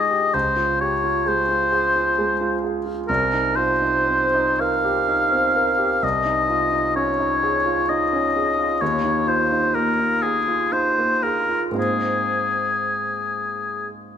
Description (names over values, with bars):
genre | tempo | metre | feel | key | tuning
classical, impressionist duo for oboe and grand piano | 55-68 BPM | 3/4 | rubato | unclear | A4 = 440 Hz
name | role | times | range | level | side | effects
warm oboe | melody | 0.0-13.9 s | Ab4 to F5 | -20 LUFS | left 2 dB | none
clear grand piano | accompaniment | 0.0-14.2 s | C2 to Bb4 | -24 LUFS | right 2 dB | none
room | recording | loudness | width
moderate recital hall reverb, RT60 1.5 s | minimal, uncompressed stereo recording | -18 LUFS | side -8 dB against mid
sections
0.0-14.2 A section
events
none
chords
0.3 Dbmaj7; 3.1 Cm7; 6.0 Dbadd9/C; 8.8 Ebsus24; 11.8 Abadd9